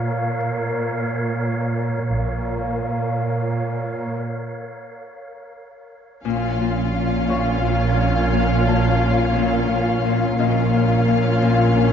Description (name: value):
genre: cinematic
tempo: 87 BPM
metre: 3/4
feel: straight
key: Bb harmonic minor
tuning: A4 = 440 Hz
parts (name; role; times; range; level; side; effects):
- wind-like tuned noise texture; sustained chords; 0.0-11.9 s; Bb4 to F5; -27 LUFS; left 1 dB; built-in reverb
- dark studio cello section; bass; 0.0-11.9 s; Bb2; -24 LUFS; right 3 dB; none
- felt-muted upright piano; texture; 0.0-11.9 s; Db5 to Db6; -35 LUFS; left 2 dB; none
- dark symphonic double bass section; bass; 2.1-2.8, 6.2-11.9 s; Bb1; -23 LUFS; right 4 dB; none
- warm symphonic viola section; accompaniment; 6.2-11.9 s; Db4; -27 LUFS; right 1 dB; none
- Celtic harp; riff; 6.2-11.9 s; Bb2; -22 LUFS; left 6 dB; none
- warm symphonic violin section; melody; 6.3-11.9 s; F5; -27 LUFS; left 4 dB; none
- rich symphonic violin section; second line; 6.3-11.9 s; F4; -27 LUFS; left 2 dB; none
room: wet scoring stage reverb, RT60 1.7 s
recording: dark, warm production, nothing above 7.5 kHz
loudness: -18 LUFS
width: side -8 dB against mid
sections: 0.0-6.2 A section; 6.2-11.9 A section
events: break 4.2-6.2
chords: 0.0 Bbm